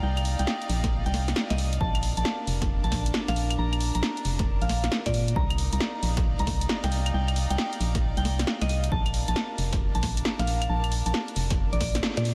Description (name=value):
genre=UK garage, two-step garage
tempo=135 BPM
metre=4/4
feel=swing 65% on 16ths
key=unclear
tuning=A4 = 440 Hz
part: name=soft synth bell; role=melody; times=0.0-12.3 s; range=D5 to Bb5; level=-36 LUFS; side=equal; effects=chorus, phaser, tape echo
part: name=organ-like FM bass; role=bass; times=0.0-12.3 s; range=F1 to Bb2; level=-29 LUFS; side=equal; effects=sidechain pumping
part: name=rich chamber string section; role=texture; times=0.0-12.3 s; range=D4 to Bb5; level=-39 LUFS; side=equal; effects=sidechain pumping
part: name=punchy analog drum machine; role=drums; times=0.2-12.3 s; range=claves, hi-hat, snare drum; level=-33 LUFS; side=equal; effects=small room ambience
part: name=electronic kick drum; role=drums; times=0.8-11.9 s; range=none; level=-31 LUFS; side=equal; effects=small room ambience
room=moderate huge ambient reverb, RT60 4.5 s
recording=dreamy mix soaked in reverb, lossy compression artefacts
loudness=-26 LUFS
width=mono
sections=0.0-12.3 A section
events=kick drops out 12.0-12.3; band accent 12.0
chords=0.0 Cm11; 1.8 Bbmaj7; 5.4 Cm11; 8.9 Bbmaj7